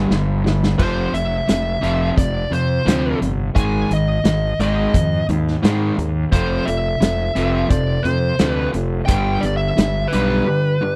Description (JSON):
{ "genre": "classic rock", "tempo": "87 BPM", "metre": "4/4", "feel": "straight", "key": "unclear", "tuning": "A4 = 440 Hz", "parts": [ { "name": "overdriven electric guitar", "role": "riff", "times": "0.0-11.0 s", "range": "F2 to Ab3", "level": "-27 LUFS", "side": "equal", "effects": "spring reverb" }, { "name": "overdriven semi-hollow guitar", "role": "riff", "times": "0.0-11.0 s", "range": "F2 to Ab3", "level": "-26 LUFS", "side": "equal", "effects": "none" }, { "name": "fuzz fingered electric bass", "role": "bass", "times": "0.0-10.4 s", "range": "F1 to Ab2", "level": "-24 LUFS", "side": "equal", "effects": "overdrive" }, { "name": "vintage drum kit", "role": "drums", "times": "0.1-10.3 s", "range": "crash cymbal, hi-hat, kick drum, snare drum", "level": "-22 LUFS", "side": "equal", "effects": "none" }, { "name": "smooth overdriven lead guitar", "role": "melody", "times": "0.8-11.0 s", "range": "B4 to Ab5", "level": "-25 LUFS", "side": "equal", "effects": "slapback echo" }, { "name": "overdriven reed electric piano", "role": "accompaniment", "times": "6.3-11.0 s", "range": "D4 to D5", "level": "-31 LUFS", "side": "equal", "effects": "none" } ], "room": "little or no reverb", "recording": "none", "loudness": "-19 LUFS", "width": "mono", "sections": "0.8-11.0 A section", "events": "drum fill 0.0-0.8", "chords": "0.0 G5; 0.8 F5; 3.6 Ab5; 6.3 F; 9.1 G" }